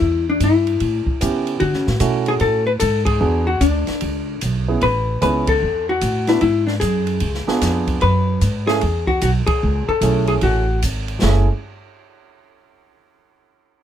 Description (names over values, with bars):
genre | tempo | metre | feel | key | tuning
jazz, small-group swing and bop | 150 BPM | 4/4 | swing 65% on 8ths | F# minor | A4 = 444 Hz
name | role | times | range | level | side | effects
vintage hollow-body jazz guitar | melody | 0.0-10.8 s | D4 to B4 | -19 LUFS | left 4 dB | none
upright bass | bass | 0.0-11.5 s | F#1 to D3 | -20 LUFS | right 1 dB | none
open jazz drum kit | drums | 0.4-11.3 s | china cymbal, hi-hat, kick drum, ride cymbal, snare drum | -26 LUFS | right 1 dB | none
warm grand piano | accompaniment | 1.2-11.5 s | A3 to B4 | -22 LUFS | right 5 dB | none
room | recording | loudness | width
little or no reverb | close, detailed microphones | -16 LUFS | side -10 dB against mid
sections
0.0-11.2 A section; 11.2-12.8 B section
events
band accent 3.0, 5.4, 9.4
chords
0.0 Em; 0.8 A7; 1.6 Dmaj7 (rootless); 3.2 E9; 4.8 Amaj7; 6.4 Eadd9; 7.2 C#7b9; 8.0 F#m9 (rootless); 11.2 F#m9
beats
| 0.01 0.41 0.81 1.21 | 1.61 2.01 2.41 2.81 | 3.21 3.61 4.01 4.41 | 4.81 5.21 5.61 6.01 | 6.42 6.82 7.22 7.62 | 8.02 8.42 8.82 9.22 | 9.62 10.02 10.42 10.82 | 11.22